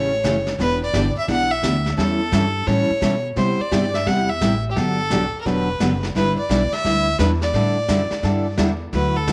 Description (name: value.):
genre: country, western swing.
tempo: 172 BPM.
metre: 4/4.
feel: swing 64% on 8ths.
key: unclear.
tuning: A4 = 440 Hz.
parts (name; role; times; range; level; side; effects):
clear fiddle; melody; 0.0-9.3 s; G4 to F#5; -25 LUFS; equal; none.
picked steel-string acoustic guitar; accompaniment; 0.0-9.3 s; C3 to B4; -24 LUFS; equal; none.
upright bass; bass; 0.0-9.3 s; E1 to C3; -27 LUFS; equal; none.
vintage brush drum kit; drums; 0.2-9.3 s; brushed snare drum, hi-hat, kick drum, snare drum; -31 LUFS; equal; none.
room: moderate spring reverb, RT60 1.4 s.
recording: none.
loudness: -20 LUFS.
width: mono.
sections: 0.0-8.9 A section.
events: none.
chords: 0.0 A7; 0.6 Em7; 2.0 A7; 3.4 Cmaj7; 4.8 Gmaj7; 6.2 Em7/G; 7.5 A7sus4.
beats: 0.24 | 0.59 0.94 1.28 1.63 | 1.98 2.33 2.67 3.02 | 3.37 3.72 4.07 4.41 | 4.76 5.11 5.46 5.80 | 6.15 6.50 6.85 7.20 | 7.54 7.89 8.24 8.59 | 8.93 9.28.